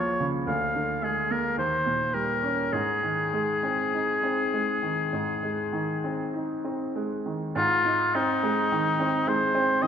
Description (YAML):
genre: classical, romantic duo for oboe and grand piano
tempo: 48-57 BPM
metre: 4/4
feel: rubato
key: Ab major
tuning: A4 = 444 Hz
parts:
  - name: warm oboe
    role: melody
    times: 0.0-9.9 s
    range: Eb4 to F5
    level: -25 LUFS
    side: left 2 dB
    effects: none
  - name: bright baby grand piano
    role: accompaniment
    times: 0.0-9.9 s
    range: Db2 to F4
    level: -28 LUFS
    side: right 2 dB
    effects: none
room: wet scoring stage reverb, RT60 2.0 s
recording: minimal, uncompressed stereo recording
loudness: -24 LUFS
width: side -8 dB against mid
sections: 0.0-7.6 A section; 7.6-9.9 A section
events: none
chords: 0.5 Bb7/D; 1.6 Eb7; 2.7 Ab